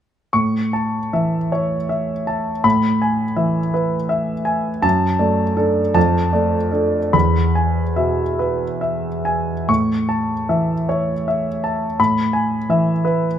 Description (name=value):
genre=classical, romantic character piece for solo piano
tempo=45-58 BPM (dotted quarters)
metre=6/8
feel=rubato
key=A major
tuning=A4 = 440 Hz
part: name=warm concert grand piano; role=solo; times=0.3-13.4 s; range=E2 to C#6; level=-16 LUFS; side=equal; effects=none
room=light reverb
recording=close, detailed microphones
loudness=-16 LUFS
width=side -9 dB against mid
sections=0.3-13.4 A section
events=none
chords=0.3 A; 2.6 E/A; 4.8 D/F#; 6.0 Dm/F; 7.1 E; 9.7 A; 12.0 E/A